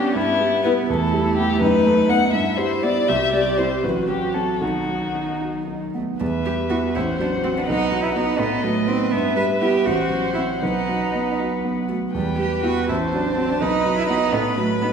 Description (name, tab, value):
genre	quick classical-period movement for piano quartet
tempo	74-84 BPM (dotted quarters)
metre	6/8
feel	rubato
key	E minor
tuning	A4 = 439 Hz
part	dark violin	melody	0.0-14.9 s	E4 to B5	-24 LUFS	left 4 dB	none
part	warm cello	second line	0.0-14.9 s	D#3 to B4	-24 LUFS	right 4 dB	none
part	clear concert grand piano	accompaniment	0.0-14.9 s	A1 to G4	-23 LUFS	right 1 dB	none
part	dark viola	accompaniment	0.0-14.9 s	B3 to C5	-27 LUFS	right 1 dB	none
room	wet scoring stage reverb, RT60 1.6 s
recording	heard from further back in the room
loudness	-18 LUFS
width	side -7 dB against mid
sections	0.0-6.2 A section; 6.2-14.9 B section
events	none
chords	0.2 Em/G; 0.9 Em; 1.6 B7/F#; 2.3 Em/G; 3.1 C; 3.8 F#dim/A; 4.6 B; 6.2 Em; 6.9 F#dim/A; 7.7 B; 8.4 B7/A; 9.1 Em/G; 9.9 F#dim/A; 10.6 B; 12.1 Em; 12.9 F#dim/A; 13.6 B; 14.3 B7/A